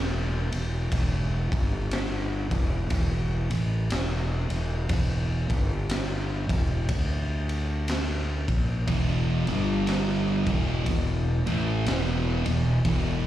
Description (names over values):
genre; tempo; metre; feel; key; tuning
stoner and doom metal; 60 BPM; 4/4; swing 60% on 8ths; E minor; A4 = 440 Hz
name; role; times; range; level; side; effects
fuzz fingered electric bass; bass; 0.0-13.3 s; E1 to D2; -27 LUFS; equal; overdrive
raw garage drum kit; drums; 0.5-13.1 s; kick drum, ride cymbal, snare drum; -30 LUFS; equal; none
thick fuzz guitar; riff; 8.9-13.3 s; E2 to A3; -25 LUFS; right 1 dB; distortion
room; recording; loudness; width
studio ambience; live gig heard through the venue's PA, club reverb; -24 LUFS; side -13 dB against mid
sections
0.0-13.3 A section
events
none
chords
0.0 N.C.; 2.4 Esus4; 5.4 N.C.; 8.4 E5; 9.4 G5; 10.4 E5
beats
| 0.93 1.92 2.92 3.92 | 4.91 5.91 6.90 7.90 | 8.89 9.88 10.88 11.87 | 12.86